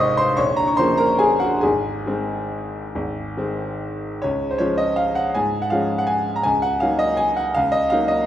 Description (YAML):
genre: classical, piano waltz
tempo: 132-175 BPM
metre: 3/4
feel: rubato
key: Db major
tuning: A4 = 440 Hz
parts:
  - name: bright grand piano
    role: solo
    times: 0.0-8.3 s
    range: Bb0 to Eb6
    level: -18 LUFS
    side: equal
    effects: none
room: wet recital hall reverb, RT60 1.5 s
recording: heard from further back in the room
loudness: -18 LUFS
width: side -11 dB against mid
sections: 0.0-4.2 A section; 4.2-8.3 B section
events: none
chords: 0.4 Bbm; 1.6 Ab; 4.2 Db; 6.4 Ebm7/Db